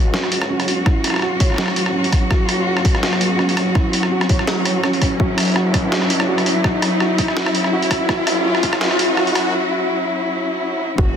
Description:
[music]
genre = half-time drum and bass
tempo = 166 BPM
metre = 4/4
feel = swing 54% on 16ths, half-time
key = unclear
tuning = A4 = 439 Hz
[part]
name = dark studio cello section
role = sustained chords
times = 0.0-11.2 s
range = F#3 to F#4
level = -20 LUFS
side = left 1 dB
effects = sidechain pumping
[part]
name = felt-muted upright piano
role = arpeggios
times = 0.0-11.2 s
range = F#3 to C#5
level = -24 LUFS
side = right 4 dB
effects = vintage 12-bit sampler grit, low-pass filter, tape echo
[part]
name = dark detuned saw bass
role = bass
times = 0.0-11.2 s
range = E1 to F#2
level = -30 LUFS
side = equal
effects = high-pass filter
[part]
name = riser and impact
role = sound effects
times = 1.0-11.2 s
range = none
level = -25 LUFS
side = left 1 dB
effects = none
[part]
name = boom bap sampler-style drum kit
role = drums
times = 0.1-9.4 s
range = hi-hat, rim click, snare drum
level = -21 LUFS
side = equal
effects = high-pass filter on hats, soft clipping on snare, high-pass filter on snare, high-pass filter on room
[part]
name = electronic kick drum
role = drums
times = 0.9-8.7, 11.0-11.1 s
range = none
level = -17 LUFS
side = equal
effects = none
[sound]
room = moderate lush hall reverb, RT60 1.7 s, digital ambience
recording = dense, heavily limited modern master, high-pass filter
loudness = -15 LUFS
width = side -8 dB against mid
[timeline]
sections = 0.0-11.0 A section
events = build-up 0.0-11.0; riser 1.0-9.5; break 9.5-11.0; impact 11.0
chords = 0.0 F#5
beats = 0.14 0.50 | 0.86 1.22 1.58 1.95 | 2.31 2.67 3.03 3.39 | 3.75 4.12 4.48 4.84 | 5.20 5.56 5.92 6.28 | 6.64 7.01 7.37 7.73 | 8.09 8.45 8.81 9.18 | 9.54 9.90 10.26 10.62 | 10.98

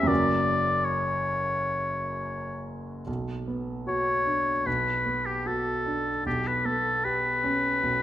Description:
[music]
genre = classical, romantic duo for oboe and grand piano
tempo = 75-82 BPM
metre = 4/4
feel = rubato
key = B minor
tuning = A4 = 440 Hz
[part]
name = warm oboe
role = melody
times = 0.0-8.0 s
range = G4 to D5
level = -26 LUFS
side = left 2 dB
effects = none
[part]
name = clear grand piano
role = accompaniment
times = 0.0-8.0 s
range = F#1 to A#4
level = -30 LUFS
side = right 1 dB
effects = none
[sound]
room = moderate recital hall reverb, RT60 1.5 s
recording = none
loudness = -25 LUFS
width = side -12 dB against mid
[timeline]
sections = 0.0-3.1 A section; 3.1-8.0 B section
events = none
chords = 0.1 F#; 3.1 Bm; 6.3 A9/B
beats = | 0.10 0.84 1.59 2.32 | 3.08 3.87 4.66 5.46 | 6.25 7.04 7.82

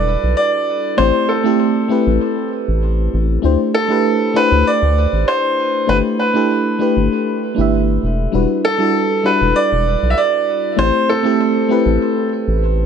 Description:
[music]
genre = sunset chillout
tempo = 98 BPM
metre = 4/4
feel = straight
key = unclear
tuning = A4 = 441 Hz
[part]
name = bright concert grand piano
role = melody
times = 0.0-12.3 s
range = A4 to E5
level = -17 LUFS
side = right 1 dB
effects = ping-pong delay
[part]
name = mellow FM electric piano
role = accompaniment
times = 0.0-12.9 s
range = G3 to E5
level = -17 LUFS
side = moving between left 6 dB and right 5 dB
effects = chorus, auto-pan, tape echo
[part]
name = round analog bass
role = bass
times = 0.0-12.9 s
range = E1 to D2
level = -17 LUFS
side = equal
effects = tube saturation
[sound]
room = light reverb, small room ambience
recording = nothing above 10.8 kHz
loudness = -13 LUFS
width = side -7 dB against mid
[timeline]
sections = 0.0-12.9 A section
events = none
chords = 0.0 Em9; 1.0 Am7; 3.4 D9sus4; 5.9 G69; 8.3 Em9; 10.8 Am7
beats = 0.38 | 0.99 1.60 2.21 2.83 | 3.44 4.05 4.66 5.27 | 5.89 6.50 7.11 7.72 | 8.34 8.95 9.56 10.17 | 10.79 11.40 12.01 12.62

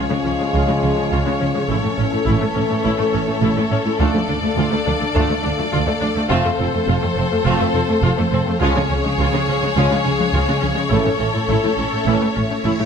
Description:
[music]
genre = cinematic, hybrid orchestral and electronic film score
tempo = 104 BPM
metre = 4/4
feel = straight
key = unclear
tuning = A4 = 442 Hz
[part]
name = clear symphonic violin section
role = melody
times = 0.0-12.9 s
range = C5 to D5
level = -25 LUFS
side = left 4 dB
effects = none
[part]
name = warm symphonic violin section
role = second line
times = 0.0-12.9 s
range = G#4 to A4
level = -25 LUFS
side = left 4 dB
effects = none
[part]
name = bright trombone section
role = sustained chords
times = 0.0-12.3 s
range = E3 to A3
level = -27 LUFS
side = right 6 dB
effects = none
[part]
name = clear French horn section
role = sustained chords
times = 0.0-12.3 s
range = C4 to A4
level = -26 LUFS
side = left 6 dB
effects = none
[part]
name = hollow soft pad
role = sustained chords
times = 0.0-12.9 s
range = F3 to E#5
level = -27 LUFS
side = left 2 dB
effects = chorus
[part]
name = tight sequenced synth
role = arpeggios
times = 0.0-12.9 s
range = C#3 to A4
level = -29 LUFS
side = left 1 dB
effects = none
[part]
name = warm symphonic viola section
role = accompaniment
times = 0.1-12.8 s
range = G#3 to E#4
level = -25 LUFS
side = equal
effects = none
[part]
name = dark symphonic cello section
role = bass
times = 0.1-12.9 s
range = D2 to C#3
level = -24 LUFS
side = right 1 dB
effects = none
[part]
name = warm symphonic double bass section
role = bass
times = 0.2-12.7 s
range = F1 to D2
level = -22 LUFS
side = right 3 dB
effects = none
[part]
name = reverse cymbal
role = sound effects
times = 12.5-12.9 s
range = none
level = -41 LUFS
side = left 1 dB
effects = none
[sound]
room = light reverb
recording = close, detailed microphones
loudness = -16 LUFS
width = side -7 dB against mid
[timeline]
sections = 0.0-12.9 A section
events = reverse cymbal 12.5-12.9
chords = 0.0 C#; 1.7 A; 4.0 Dm; 6.3 F; 8.6 C#; 10.9 A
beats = 0.54 1.11 | 1.69 2.27 2.84 3.42 | 4.00 4.57 5.15 5.73 | 6.30 6.88 7.46 8.04 | 8.61 9.19 9.77 10.34 | 10.92 11.50 12.07 12.65

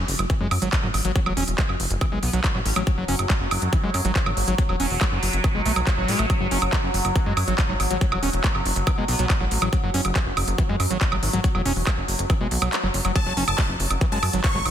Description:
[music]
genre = psychedelic trance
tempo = 140 BPM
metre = 4/4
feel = straight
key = F# minor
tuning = A4 = 437 Hz
[part]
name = bubbling stepped-filter texture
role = sustained chords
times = 0.0-14.7 s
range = F#3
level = -30 LUFS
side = right 1 dB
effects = chorus, built-in reverb, sidechain pumping
[part]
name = plucky analog bass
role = bass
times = 0.0-14.7 s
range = E1 to F#2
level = -25 LUFS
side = equal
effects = none
[part]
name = techno drum kit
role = drums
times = 0.1-14.7 s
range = handclaps, hi-hat, woodblock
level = -26 LUFS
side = right 2 dB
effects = overdrive, studio reverb
[part]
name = screaming distorted acid line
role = riff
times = 0.3-14.6 s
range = E3 to C#4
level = -29 LUFS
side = moving between left 3 dB and right 4 dB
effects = distortion, chorus, auto-pan, sidechain pumping, tape echo
[part]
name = electronic kick drum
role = drums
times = 0.3-14.5 s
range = none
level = -23 LUFS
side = equal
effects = studio reverb
[part]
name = metallic wobble bass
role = second line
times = 2.2-2.8, 9.1-9.3 s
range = B3 to C#4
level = -39 LUFS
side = left 5 dB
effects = none
[part]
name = dense compressed supersaw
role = melody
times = 13.2-14.6 s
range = A5 to C#6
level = -27 LUFS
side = left 1 dB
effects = phaser, sidechain pumping, tape echo
[sound]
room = light reverb, digital ambience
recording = dense, heavily limited modern master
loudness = -20 LUFS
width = side -10 dB against mid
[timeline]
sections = 0.0-14.7 A section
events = kick drops out 12.7-13.2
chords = 0.0 F#5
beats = 0.30 0.73 | 1.16 1.58 2.01 2.44 | 2.87 3.30 3.73 4.16 | 4.58 5.01 5.44 5.87 | 6.30 6.73 7.16 7.58 | 8.01 8.44 8.87 9.30 | 9.73 10.16 10.58 11.01 | 11.44 11.87 12.30 12.73 | 13.16 13.58 14.01 14.44

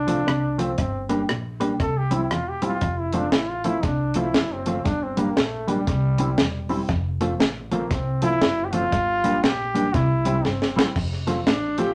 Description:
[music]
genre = ska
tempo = 118 BPM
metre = 4/4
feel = swing 62% on 8ths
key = F major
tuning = A4 = 442 Hz
[part]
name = clear trombone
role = melody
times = 0.0-11.0 s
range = G3 to A4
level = -28 LUFS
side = equal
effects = none
[part]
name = upright bass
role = bass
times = 0.0-11.9 s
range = E1 to C2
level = -31 LUFS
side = equal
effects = none
[part]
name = mellow electric guitar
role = accompaniment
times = 0.1-11.9 s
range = F3 to G4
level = -28 LUFS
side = equal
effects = none
[part]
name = deep reggae drum kit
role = drums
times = 0.1-11.9 s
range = crash cymbal, hi-hat, kick drum, rim click, snare drum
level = -26 LUFS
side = equal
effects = tape echo
[part]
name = electric guitar with an envelope filter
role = riff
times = 0.3-11.7 s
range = E2 to C3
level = -33 LUFS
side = equal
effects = tremolo, tape echo
[part]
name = warm alto saxophone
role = melody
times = 11.5-11.9 s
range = D4 to G4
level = -27 LUFS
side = equal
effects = none
[sound]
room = wet studio reverb, RT60 0.6 s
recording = none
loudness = -23 LUFS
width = mono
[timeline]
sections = 0.0-11.0 A section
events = trombone solo 0.0-11.0; drum fill 10.4-11.0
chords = 0.0 F; 0.8 Gm; 1.8 C; 2.8 F; 4.9 Gm; 5.9 C; 6.9 F; 8.9 Gm; 9.9 C; 11.0 F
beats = 0.27 | 0.78 1.29 1.80 2.31 | 2.82 3.33 3.84 4.34 | 4.85 5.36 5.87 6.38 | 6.89 7.40 7.91 8.42 | 8.92 9.43 9.94 10.45 | 10.96 11.47

